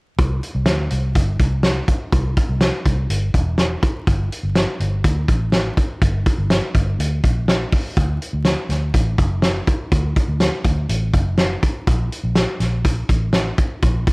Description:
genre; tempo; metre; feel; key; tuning
jangly indie pop; 123 BPM; 4/4; straight; G dorian; A4 = 440 Hz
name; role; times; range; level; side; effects
vintage muted fingered electric bass; bass; 0.2-14.0 s; E1 to D2; -20 LUFS; equal; tube saturation
loose indie drum kit; drums; 0.2-14.1 s; hi-hat, kick drum, snare drum; -18 LUFS; equal; none
room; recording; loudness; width
little or no reverb; worn, warbling old tape, cassette tape, vinyl crackle, warbly pitch drift; -16 LUFS; side -33 dB against mid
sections
0.2-14.1 A section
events
none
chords
none

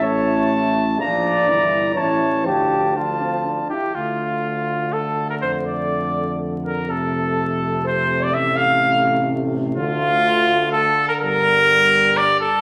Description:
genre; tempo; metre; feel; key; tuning
classical, brass quintet; 124 BPM; 3/4; straight; D minor; A4 = 440 Hz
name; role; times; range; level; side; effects
clear trumpet; melody; 0.0-12.6 s; F4 to Bb5; -21 LUFS; equal; none
mellow flugelhorn; second line; 0.0-12.6 s; F4 to F5; -26 LUFS; equal; none
clear trombone; accompaniment; 0.0-12.5 s; C3 to A3; -29 LUFS; equal; none
warm French horn; accompaniment; 0.0-12.6 s; G3 to E4; -32 LUFS; equal; none
mellow tuba; bass; 0.0-12.6 s; G1 to F2; -29 LUFS; equal; none
room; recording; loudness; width
wet recital hall reverb, RT60 1.5 s; vinyl crackle; -19 LUFS; mono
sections
0.0-4.0 A section; 4.0-12.6 B section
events
none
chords
0.0 A; 1.0 Bb; 1.5 Edim/G; 2.0 A; 2.5 Dm; 5.4 Dm/F; 6.9 F; 8.3 F/A; 9.8 Dm; 11.2 Gm

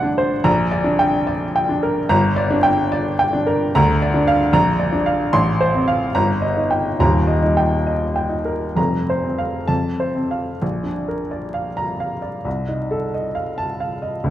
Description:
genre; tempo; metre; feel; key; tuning
classical, romantic character piece for solo piano; 64-76 BPM; 2/4; rubato; G minor, Bb major from 3.7 s; A4 = 440 Hz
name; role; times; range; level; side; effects
warm upright piano; solo; 0.0-14.3 s; Eb1 to C6; -17 LUFS; equal; none
room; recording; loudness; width
moderate recital hall reverb, RT60 1.5 s; vinyl crackle; -17 LUFS; side -12 dB against mid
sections
0.0-10.6 A section; 10.6-14.3 B section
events
none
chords
0.5 Gm/Bb; 2.1 Gm; 3.7 Bb/D; 4.5 Bb; 5.3 F/A; 6.1 Eb/G; 7.0 Eb; 8.8 Fsus4; 9.7 F; 10.6 Bb; 12.5 F7/C

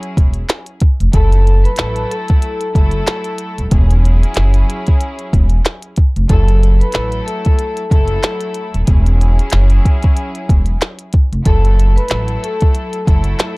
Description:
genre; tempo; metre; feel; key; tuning
hip hop, boom-bap hip-hop; 93 BPM; 4/4; swing 57% on 16ths; F# minor; A4 = 439 Hz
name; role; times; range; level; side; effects
warm studio string section; accompaniment; 0.0-13.6 s; F#3 to A4; -25 LUFS; left 1 dB; high-pass filter, low-pass filter
glitchy drum kit; drums; 0.0-13.6 s; hi-hat, kick drum, snare drum; -13 LUFS; equal; none
upright bass; bass; 0.2-13.3 s; D#1 to A1; -12 LUFS; equal; none
vibraphone with medium hard mallets; melody; 1.1-13.4 s; A4 to B5; -23 LUFS; left 2 dB; high-pass filter, low-pass filter, analog delay
room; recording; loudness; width
little or no reverb; dry, gritty hardware recording; -12 LUFS; side -26 dB against mid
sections
0.0-13.6 A section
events
none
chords
0.0 E69; 1.1 F#m7; 3.7 E69; 6.3 F#m7; 8.9 E69; 11.5 F#m7

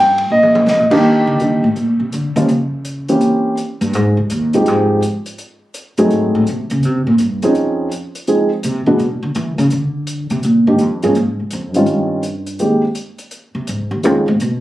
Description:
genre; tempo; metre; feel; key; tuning
jazz piano trio; 166 BPM; 4/4; swing 66% on 8ths; Eb major; A4 = 440 Hz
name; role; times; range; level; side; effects
dark baby grand piano; melody; 0.0-14.3 s; Eb3 to G5; -13 LUFS; equal; plate reverb
upright bass; bass; 0.0-14.6 s; C2 to E3; -17 LUFS; equal; none
open jazz drum kit; drums; 0.2-14.5 s; crash cymbal, hi-hat, kick drum, ride cymbal, snare drum, toms; -28 LUFS; left 1 dB; none
room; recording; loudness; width
moderate studio reverb, RT60 0.5 s; recorded on a phone in the room, club reverb, compression; -13 LUFS; side -15 dB against mid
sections
0.0-1.0 A section; 1.0-12.6 A section; 12.6-14.6 A section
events
grand piano solo 0.0-1.0; drum fill 0.3-0.7; upright bass solo 1.0-14.6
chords
0.0 Eb6; 1.0 Ebmaj7; 2.5 N.C.; 3.2 C7b9; 3.9 Fm9; 5.4 Ab7b9; 6.8 Dbmaj9; 8.3 Fm7; 9.0 E5; 9.7 Ebmaj7(no3) (rootless); 11.2 Dbmaj7 (rootless); 11.9 Eb13; 12.6 Ab; 14.0 Db9

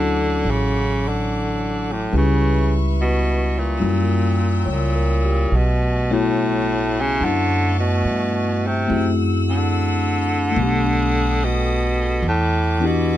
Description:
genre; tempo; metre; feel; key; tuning
jazz ballad; 72 BPM; 4/4; swing 68% on 8ths; unclear; A4 = 438 Hz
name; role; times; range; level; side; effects
warm baritone saxophone; melody; 0.0-13.2 s; A2 to D3; -22 LUFS; right 1 dB; none
tine electric piano; accompaniment; 0.0-13.2 s; E3 to C#5; -24 LUFS; left 5 dB; phaser
rich chamber string section; sustained chords; 0.0-13.2 s; A3 to E6; -30 LUFS; left 1 dB; none
upright bass; bass; 0.0-13.2 s; A1 to G2; -21 LUFS; right 1 dB; none
room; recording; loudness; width
little or no reverb; close, detailed microphones; -17 LUFS; side -13 dB against mid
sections
0.0-5.5 A section; 5.5-13.2 B section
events
none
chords
0.0 Dmaj7; 2.1 C#m7b5; 3.8 F#7b9; 5.5 Bm11; 8.9 F#m7b5; 10.6 B7alt; 12.2 Em9

